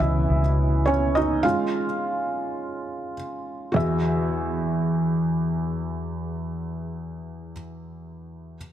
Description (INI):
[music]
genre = pop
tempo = 104 BPM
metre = 4/4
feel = swing 56% on 16ths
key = E major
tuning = A4 = 439 Hz
[part]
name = felt-muted upright piano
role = accompaniment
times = 0.0-8.6 s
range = E2 to E#5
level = -24 LUFS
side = right 1 dB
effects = none
[part]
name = vintage muted fingered electric bass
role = bass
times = 0.0-1.4 s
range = C#2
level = -22 LUFS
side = equal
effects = none
[sound]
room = light reverb, digital ambience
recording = dense, heavily limited modern master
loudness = -22 LUFS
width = side -11 dB against mid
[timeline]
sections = 0.0-3.8 A section; 3.8-6.1 B section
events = felt piano solo 0.0-3.8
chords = 0.0 C#madd9; 1.4 C#; 3.8 Eadd9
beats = 0.29 0.87 | 1.45 2.02 2.60 3.18 | 3.75 4.33 4.91 5.48